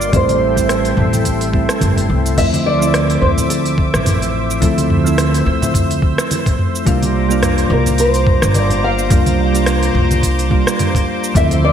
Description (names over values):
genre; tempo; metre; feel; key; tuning
sunset chillout; 107 BPM; 4/4; swing 56% on 16ths; D minor; A4 = 440 Hz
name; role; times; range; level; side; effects
nylon-string guitar; melody; 0.0-11.7 s; A4 to F5; -19 LUFS; right 1 dB; ping-pong delay
soft electric-piano-like synth keys; accompaniment; 0.0-11.7 s; F3 to F4; -18 LUFS; moving between left 4 dB and right 4 dB; chorus, auto-pan, ping-pong delay
lush unison pad; sustained chords; 0.0-11.7 s; Bb3 to E6; -23 LUFS; equal; chorus
upright bass; bass; 0.0-11.7 s; G1 to D2; -18 LUFS; equal; none
smooth R&B drum kit; drums; 0.0-11.6 s; cabasa, crash cymbal, hi-hat, rim click, toms; -20 LUFS; equal; gated reverb
electronic kick drum; drums; 0.1-11.5 s; none; -16 LUFS; equal; none
congas; percussion; 0.3-11.6 s; none; -24 LUFS; right 1 dB; none
drifting glass-harmonics texture; texture; 11.5-11.7 s; C6; -34 LUFS; right 11 dB; none
room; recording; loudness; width
moderate lush hall reverb, RT60 2.1 s; bright 1980s-style digital production; -12 LUFS; side -8 dB against mid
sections
0.0-2.4 A section; 2.4-11.7 B section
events
kick drops out 1.8-2.4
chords
0.1 Am7; 2.4 Dm9; 6.9 C9sus4